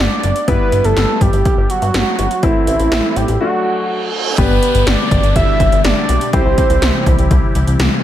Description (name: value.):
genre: synth-pop.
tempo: 123 BPM.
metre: 4/4.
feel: straight.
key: G major from 4.4 s.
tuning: A4 = 440 Hz.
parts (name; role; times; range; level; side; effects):
fat analog lead; melody; 0.0-7.3 s; E4 to E5; -17 LUFS; right 2 dB; chorus, digital delay.
clear baby grand piano; accompaniment; 0.0-8.0 s; G3 to G4; -22 LUFS; left 5 dB; none.
chorused synth bass; bass; 0.0-7.9 s; F#1 to G2; -16 LUFS; equal; none.
80s electronic pad drums; drums; 0.2-7.9 s; hi-hat, kick drum, snare drum; -16 LUFS; equal; none.
reverse cymbal and downlifter; sound effects; 3.7-8.0 s; none; -25 LUFS; right 3 dB; none.
phased analog pad; sustained chords; 4.4-8.0 s; B2 to G4; -21 LUFS; left 1 dB; phaser, chorus.
room: light reverb.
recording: none.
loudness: -12 LUFS.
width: side -12 dB against mid.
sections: 0.0-4.4 A section; 4.4-8.0 B section.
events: break 3.4-4.4; reverse cymbal 3.7-4.4.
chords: 0.5 Em/G; 2.4 Am; 3.4 D; 4.4 G; 6.3 C.